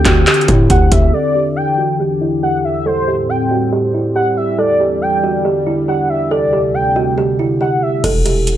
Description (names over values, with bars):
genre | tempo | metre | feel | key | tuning
hip hop, trap | 139 BPM | 4/4 | half-time | E minor | A4 = 441 Hz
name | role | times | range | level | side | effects
warm velvety synth lead | second line | 0.0-8.0 s | C5 to G5 | -18 LUFS | equal | chorus, tape echo
sweeping resonant pad | sustained chords | 0.0-8.0 s | D2 to G4 | -19 LUFS | equal | chorus, phaser, low-pass filter
hard-hitting 808-style bass | bass | 0.0-1.1, 8.0-8.6 s | E1 to A2 | -13 LUFS | equal | none
kalimba | melody | 0.1-8.5 s | E4 to A4 | -17 LUFS | right 2 dB | low-pass filter
booming analog drum machine | drums | 0.1-1.1, 8.0-8.6 s | crash cymbal, handclaps, hi-hat, kick drum | -14 LUFS | equal | none
room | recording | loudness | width
digital ambience | dry, gritty hardware recording | -12 LUFS | side -11 dB against mid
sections
0.0-1.1 A section; 1.1-8.0 B section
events
filter sweep 1.1-8.0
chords
0.0 D7sus4; 1.1 Em7; 2.9 Am7; 4.6 Em7; 6.3 D7sus4; 8.0 Em